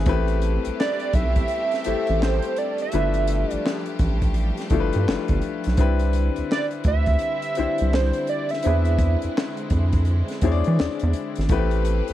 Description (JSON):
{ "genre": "R&B, neo-soul", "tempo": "84 BPM", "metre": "4/4", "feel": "swing 63% on 16ths", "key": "C major", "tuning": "A4 = 440 Hz", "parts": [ { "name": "warm concert grand piano", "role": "accompaniment", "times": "0.0-12.1 s", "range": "A3 to E5", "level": "-27 LUFS", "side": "left 9 dB", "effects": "none" }, { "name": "warm studio string section", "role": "sustained chords", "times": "0.0-12.1 s", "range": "D3 to B4", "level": "-33 LUFS", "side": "right 2 dB", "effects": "none" }, { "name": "rubbery square bass", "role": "bass", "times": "0.0-12.1 s", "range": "G1 to E3", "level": "-21 LUFS", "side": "equal", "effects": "none" }, { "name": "compact cocktail drum kit", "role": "drums", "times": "0.1-12.1 s", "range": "handclaps, hi-hat, kick drum, snare drum", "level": "-25 LUFS", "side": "equal", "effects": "none" }, { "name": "hollow square lead", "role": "melody", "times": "0.8-9.6 s", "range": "C5 to E5", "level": "-25 LUFS", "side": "right 4 dB", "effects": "chorus" } ], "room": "little or no reverb", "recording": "dry, close 1970s-style studio recording", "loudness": "-20 LUFS", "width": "side -13 dB against mid", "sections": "0.0-12.1 A section", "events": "none", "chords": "0.1 Am9; 2.9 G13; 5.8 Cmaj9; 8.6 E7b13; 11.5 Am9", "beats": "| 0.07 0.78 1.49 2.21 | 2.92 3.64 4.35 5.07 | 5.78 6.49 7.21 7.92 | 8.64 9.35 10.06 10.78 | 11.49" }